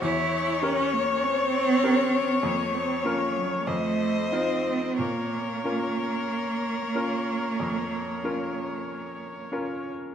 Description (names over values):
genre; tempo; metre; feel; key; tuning
classical, slow romantic movement for piano quartet; 45-50 BPM; 4/4; rubato; Bb minor; A4 = 440 Hz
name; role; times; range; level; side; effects
rich violin; melody; 0.0-9.5 s; Bb4 to C#5; -30 LUFS; left 7 dB; none
rich cello; second line; 0.0-9.5 s; Gb3 to E4; -28 LUFS; right 3 dB; none
bright baby grand piano; accompaniment; 0.0-10.1 s; E2 to C5; -31 LUFS; left 1 dB; none
warm viola; accompaniment; 0.0-9.9 s; Db5 to Eb5; -32 LUFS; right 1 dB; none
room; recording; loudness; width
moderate recital hall reverb, RT60 1.6 s; none; -24 LUFS; side -8 dB against mid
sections
0.0-10.1 A section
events
none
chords
0.0 Edim7; 2.4 Bbm/F; 3.7 F7; 5.0 Bbm